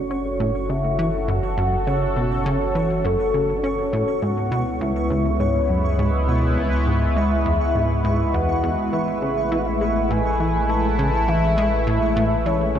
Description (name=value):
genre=ambient, sequencer-driven space music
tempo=102 BPM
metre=4/4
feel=straight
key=F# minor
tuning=A4 = 441 Hz
part: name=soft octave-layered synth lead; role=melody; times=0.0-12.8 s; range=A4 to A5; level=-24 LUFS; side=left 1 dB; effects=chorus, phaser, analog delay
part: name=sweeping resonant pad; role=sustained chords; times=0.0-12.8 s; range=G#3 to B4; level=-25 LUFS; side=equal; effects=chorus
part: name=warm sub bass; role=bass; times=0.0-12.8 s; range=F#1 to C#2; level=-25 LUFS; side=equal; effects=none
part: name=pulsing gated texture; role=texture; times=0.0-12.8 s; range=C#6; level=-34 LUFS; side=right 3 dB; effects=chorus, built-in reverb
part: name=plucky analog bass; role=riff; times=0.1-12.8 s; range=C#2 to E4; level=-24 LUFS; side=equal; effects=analog delay
room=wet huge ambient reverb, RT60 8.6 s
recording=lossy compression artefacts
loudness=-18 LUFS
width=side -9 dB against mid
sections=0.0-12.8 A section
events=none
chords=0.0 F#m; 4.2 C#m7; 8.9 Amaj7